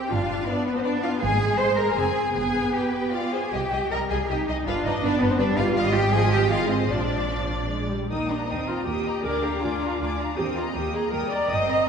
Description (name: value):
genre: quick classical-period movement for string orchestra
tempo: 159 BPM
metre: 3/4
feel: rubato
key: Eb major from 5.8 s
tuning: A4 = 440 Hz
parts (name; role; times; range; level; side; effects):
- rich studio violin section; second line; 0.0-11.9 s; Bb4 to C6; -30 LUFS; left 5 dB; none
- rich studio viola section; accompaniment; 0.0-11.9 s; F3 to Eb5; -27 LUFS; equal; none
- rich studio cello section; bass; 0.0-11.9 s; G3 to C5; -26 LUFS; right 2 dB; none
- rich studio double bass section; bass; 0.1-11.8 s; F1 to Eb2; -29 LUFS; right 2 dB; none
- rich studio violin section; melody; 0.5-11.9 s; B4 to Eb6; -33 LUFS; left 5 dB; none
room: wet concert hall reverb, RT60 2.0 s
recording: heard from further back in the room, nothing above 10.6 kHz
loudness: -22 LUFS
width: side -6 dB against mid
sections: 0.0-8.1 A section; 8.1-11.9 B section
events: none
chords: 0.1 G7; 1.2 Ab; 2.0 Fm; 2.4 G; 3.5 Cm; 4.7 G7; 5.8 Fm7/Ab; 6.9 Bb; 8.1 Eb; 9.2 Bb7/D; 10.4 Eb